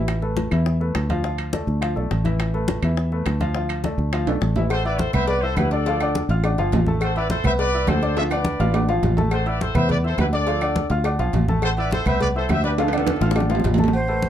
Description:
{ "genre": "latin, salsa", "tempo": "208 BPM", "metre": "4/4", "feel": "straight", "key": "A minor", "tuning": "A4 = 438 Hz", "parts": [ { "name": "clear concert grand piano", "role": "accompaniment", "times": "0.0-14.3 s", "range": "E3 to F6", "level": "-26 LUFS", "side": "left 2 dB", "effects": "none" }, { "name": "fingered electric bass", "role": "bass", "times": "0.0-14.3 s", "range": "G1 to E2", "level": "-22 LUFS", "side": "equal", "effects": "none" }, { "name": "bongos and cowbell", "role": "percussion", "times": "0.1-14.0 s", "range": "none", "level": "-30 LUFS", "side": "left 6 dB", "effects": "none" }, { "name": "claves", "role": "percussion", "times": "0.1-13.5 s", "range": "none", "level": "-35 LUFS", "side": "right 3 dB", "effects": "none" }, { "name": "congas", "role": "percussion", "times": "0.1-14.3 s", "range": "none", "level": "-27 LUFS", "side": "left 1 dB", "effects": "none" }, { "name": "timbales and agogo bells", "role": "percussion", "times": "0.1-14.3 s", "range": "none", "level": "-27 LUFS", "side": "right 4 dB", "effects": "none" }, { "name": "clear trumpet section", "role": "melody", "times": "4.7-13.6 s", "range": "E4 to E5", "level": "-25 LUFS", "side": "equal", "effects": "none" }, { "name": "breathy bright jazz flute", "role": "melody", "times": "13.9-14.3 s", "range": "C5", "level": "-24 LUFS", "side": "equal", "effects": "none" } ], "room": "moderate studio ambience, RT60 0.5 s", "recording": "dark, warm production", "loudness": "-19 LUFS", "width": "side -10 dB against mid", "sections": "0.0-4.7 A section; 4.7-13.9 B section", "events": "drum fill 4.3-4.7, 8.2-9.3, 12.8-13.9", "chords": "0.1 Asus2; 4.7 Amadd9; 5.9 Dm; 7.0 Amadd9; 8.2 Dm; 9.3 Amadd9; 10.5 Dm; 11.6 Amadd9; 12.8 Dm", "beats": "| 0.08 0.37 0.66 0.95 | 1.24 1.53 1.82 2.10 | 2.39 2.68 2.97 3.26 | 3.55 3.84 4.13 4.42 | 4.71 4.99 5.28 5.57 | 5.86 6.15 6.44 6.73 | 7.01 7.30 7.59 7.88 | 8.17 8.46 8.74 9.03 | 9.32 9.61 9.90 10.19 | 10.47 10.76 11.05 11.34 | 11.63 11.92 12.21 12.49 | 12.78 13.07 13.36 13.65 | 13.94 14.23" }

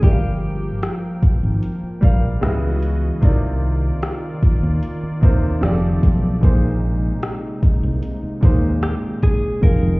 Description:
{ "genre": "contemporary R&B", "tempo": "75 BPM", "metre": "4/4", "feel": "straight", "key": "unclear", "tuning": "A4 = 438 Hz", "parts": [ { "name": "direct-recorded clean electric guitar", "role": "melody", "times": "0.0-0.8, 8.8-10.0 s", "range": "G4 to Bb4", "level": "-27 LUFS", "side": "equal", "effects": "tape echo" }, { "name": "warm grand piano", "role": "accompaniment", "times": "0.0-10.0 s", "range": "Bb2 to F5", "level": "-25 LUFS", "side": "right 1 dB", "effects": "none" }, { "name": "warm analog pad", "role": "sustained chords", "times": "0.0-10.0 s", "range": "C3 to G5", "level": "-27 LUFS", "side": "equal", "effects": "chorus" }, { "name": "fingered electric bass", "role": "bass", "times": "0.0-10.0 s", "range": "F1 to Eb2", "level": "-19 LUFS", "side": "equal", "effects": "none" }, { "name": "smooth R&B drum kit", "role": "drums", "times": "0.0-9.8 s", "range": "hi-hat, kick drum, rim click", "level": "-15 LUFS", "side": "equal", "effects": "none" } ], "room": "little or no reverb", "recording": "heard muffled through a wall, stone room reverb, EQ", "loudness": "-16 LUFS", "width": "side -24 dB against mid", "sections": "0.0-10.0 A section", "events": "none", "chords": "0.0 Gm7; 2.4 Dbm11; 3.2 Cm11; 5.6 F13; 6.4 Bb9sus4", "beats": "| 0.03 0.83 1.63 2.43 | 3.23 4.03 4.83 5.63 | 6.43 7.23 8.03 8.83 | 9.63" }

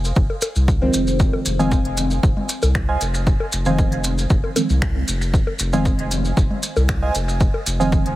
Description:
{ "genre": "dub techno", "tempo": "116 BPM", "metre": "4/4", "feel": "straight", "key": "F minor", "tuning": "A4 = 440 Hz", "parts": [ { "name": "soft dub sub bass", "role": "bass", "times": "0.0-8.2 s", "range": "F1 to C2", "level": "-21 LUFS", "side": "equal", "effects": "sidechain pumping" }, { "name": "maracas", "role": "percussion", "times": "0.0-8.0 s", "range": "none", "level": "-28 LUFS", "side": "equal", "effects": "none" }, { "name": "electronic kick drum", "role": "drums", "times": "0.2-8.0 s", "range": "none", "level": "-18 LUFS", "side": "equal", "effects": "none" }, { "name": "bongos and congas", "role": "percussion", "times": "0.3-7.6 s", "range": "none", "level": "-27 LUFS", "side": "left 3 dB", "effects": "sidechain pumping on perc, dub echo" }, { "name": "deep house drum kit", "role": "drums", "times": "0.4-8.2 s", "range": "finger snaps, hi-hat", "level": "-29 LUFS", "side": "equal", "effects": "dub echo" }, { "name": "deep mellow chord stab", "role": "stabs", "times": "0.8-8.1 s", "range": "Eb3 to C4", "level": "-23 LUFS", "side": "equal", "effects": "chorus, phaser, sidechain pumping, dub echo" }, { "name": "warbly lo-fi synth keys", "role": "riff", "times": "1.6-8.0 s", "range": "C5 to Ab5", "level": "-28 LUFS", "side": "right 3 dB", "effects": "chorus, sidechain pumping, dub echo" } ], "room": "little or no reverb", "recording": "heavily compressed radio sound", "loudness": "-17 LUFS", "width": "side -16 dB against mid", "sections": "0.0-8.2 A section", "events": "none", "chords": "0.0 Fm7", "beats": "0.16 0.68 | 1.20 1.72 2.23 2.75 | 3.27 3.79 4.30 4.82 | 5.34 5.85 6.37 6.89 | 7.41 7.92" }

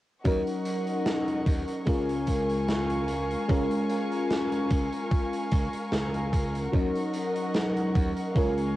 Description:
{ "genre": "vaporwave", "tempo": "74 BPM", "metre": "4/4", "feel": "swing 54% on 16ths", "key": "unclear", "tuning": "A4 = 440 Hz", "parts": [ { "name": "FM electric piano with soft pad layer", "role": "accompaniment", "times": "0.2-8.8 s", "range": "Gb3 to Bb4", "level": "-28 LUFS", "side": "left 1 dB", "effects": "wide subtle chorus, cassette tape, analog delay" }, { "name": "warm chamber string section", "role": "sustained chords", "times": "0.2-8.8 s", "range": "Bb4 to Db6", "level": "-34 LUFS", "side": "equal", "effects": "cassette tape" }, { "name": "glassy slap bass", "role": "bass", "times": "0.2-8.8 s", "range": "Db2 to Eb2", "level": "-33 LUFS", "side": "equal", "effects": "tube saturation" }, { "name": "electronic kick drum", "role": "drums", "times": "0.2-8.5 s", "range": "none", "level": "-26 LUFS", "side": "equal", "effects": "overdrive, cassette tape" }, { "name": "raw garage drum kit", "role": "drums", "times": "0.2-8.7 s", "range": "hi-hat, snare drum", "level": "-36 LUFS", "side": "right 1 dB", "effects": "cassette tape" } ], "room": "moderate studio reverb, RT60 0.5 s", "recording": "home recording on cassette", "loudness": "-25 LUFS", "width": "side -16 dB against mid", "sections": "0.2-8.8 A section", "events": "none", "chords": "0.2 Ebm7; 1.9 Db6; 6.7 Ebm7", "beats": "| 0.25 1.06 1.87 2.68 | 3.49 4.30 5.11 5.92 | 6.74 7.55 8.36" }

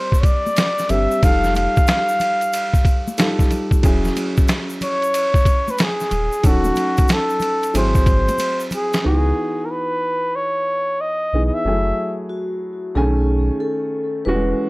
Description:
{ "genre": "hip hop, jazz-hop", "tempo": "92 BPM", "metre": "4/4", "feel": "swing 65% on 16ths", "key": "C# minor from 9.1 s", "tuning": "A4 = 440 Hz", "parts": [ { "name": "mellow flugelhorn", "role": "melody", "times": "0.0-12.2 s", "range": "F#4 to F5", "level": "-20 LUFS", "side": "equal", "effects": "none" }, { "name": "dark upright piano", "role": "accompaniment", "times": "0.0-14.7 s", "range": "D3 to G#5", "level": "-24 LUFS", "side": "equal", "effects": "none" }, { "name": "boom bap sampler-style drum kit", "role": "drums", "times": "0.1-9.0 s", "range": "hi-hat, kick drum, ride cymbal, snare drum", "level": "-18 LUFS", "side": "equal", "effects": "none" }, { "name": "tube shaker and congas", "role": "percussion", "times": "0.1-9.0 s", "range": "none", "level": "-32 LUFS", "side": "left 2 dB", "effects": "none" }, { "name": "warm sub bass", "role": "bass", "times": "0.9-14.5 s", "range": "D#1 to C#2", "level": "-20 LUFS", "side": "equal", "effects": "none" }, { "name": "vibraphone with soft mallets", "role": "second line", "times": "12.3-14.7 s", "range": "F#4 to B4", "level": "-24 LUFS", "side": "equal", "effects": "analog delay" } ], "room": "studio reverb", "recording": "dry, gritty hardware recording", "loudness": "-16 LUFS", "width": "side -22 dB against mid", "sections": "0.0-9.1 A section; 9.1-14.7 B section", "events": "drum fill 8.4-9.1", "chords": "0.0 A#69; 1.2 F9; 3.8 E69; 6.4 D#m7b5; 7.7 G#aug7; 9.1 C#m11; 11.7 F#m9; 13.0 B13", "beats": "0.57 | 1.23 1.88 2.53 3.18 | 3.83 4.49 5.14 5.79 | 6.44 7.09 7.75 8.40 | 9.05 9.70 10.36 11.01 | 11.66 12.31 12.96 13.62 | 14.27" }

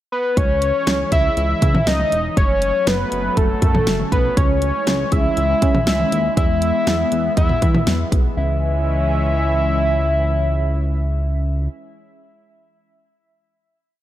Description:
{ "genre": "synth-pop", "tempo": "120 BPM", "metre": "4/4", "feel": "straight", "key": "C# minor", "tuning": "A4 = 440 Hz", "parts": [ { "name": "fat analog lead", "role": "melody", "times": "0.1-11.7 s", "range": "A4 to E5", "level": "-20 LUFS", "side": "equal", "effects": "tape echo" }, { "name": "phased analog pad", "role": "sustained chords", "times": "0.7-11.7 s", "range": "E3 to C#4", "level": "-25 LUFS", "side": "left 1 dB", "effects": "phaser, chorus" }, { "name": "chorused synth bass", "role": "bass", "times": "0.4-11.7 s", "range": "E1 to E3", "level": "-21 LUFS", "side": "equal", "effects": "none" }, { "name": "pop drum kit", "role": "drums", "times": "0.4-8.2 s", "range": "hi-hat, kick drum, snare drum, toms", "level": "-19 LUFS", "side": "equal", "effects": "none" } ], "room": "light reverb", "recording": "none", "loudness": "-16 LUFS", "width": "side -13 dB against mid", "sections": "0.0-0.4 pickup bar; 0.4-8.4 verse; 8.4-12.4 final chord", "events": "none", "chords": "0.4 C#m; 2.4 F#m; 4.4 C#m; 6.4 E; 8.4 C#m", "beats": "| 0.37 0.87 1.37 1.87 | 2.37 2.87 3.37 3.87 | 4.37 4.87 5.37 5.87 | 6.37 6.87 7.37 7.87 | 8.37 8.87 9.37 9.87 | 10.37 10.87 11.37" }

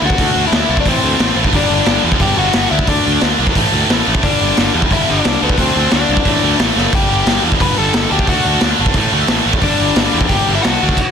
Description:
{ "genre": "punk rock", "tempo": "178 BPM", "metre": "4/4", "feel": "straight", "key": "unclear", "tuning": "A4 = 440 Hz", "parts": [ { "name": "crunchy overdriven guitar", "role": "melody", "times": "0.0-11.1 s", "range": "B3 to B5", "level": "-18 LUFS", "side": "left 6 dB", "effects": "none" }, { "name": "tight distorted guitar", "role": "riff", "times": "0.0-11.0 s", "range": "G2 to D4", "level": "-15 LUFS", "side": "right 1 dB", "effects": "distortion" }, { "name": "fuzz picked electric bass", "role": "bass", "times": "0.0-10.9 s", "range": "F#1 to E2", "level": "-19 LUFS", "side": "right 1 dB", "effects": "overdrive" }, { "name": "raw garage drum kit", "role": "drums", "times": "0.1-11.1 s", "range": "crash cymbal, hi-hat, kick drum, snare drum", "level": "-17 LUFS", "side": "equal", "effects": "none" } ], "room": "light reverb", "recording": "dense, heavily limited modern master", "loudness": "-11 LUFS", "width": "side -7 dB against mid", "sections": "0.0-11.1 A section", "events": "drum fill 6.8", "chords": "0.0 D; 0.9 Am; 1.5 G5; 2.7 D5; 3.6 A5; 4.2 G5; 5.4 D5; 6.3 A5; 6.9 G; 8.1 D; 9.0 A5; 9.6 G5", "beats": "| 0.19 0.53 0.86 1.20 | 1.54 1.88 2.21 2.55 | 2.89 3.22 3.56 3.90 | 4.24 4.57 4.91 5.25 | 5.58 5.92 6.26 6.59 | 6.93 7.27 7.61 7.94 | 8.28 8.62 8.95 9.29 | 9.62 9.96 10.30 10.63 | 10.97" }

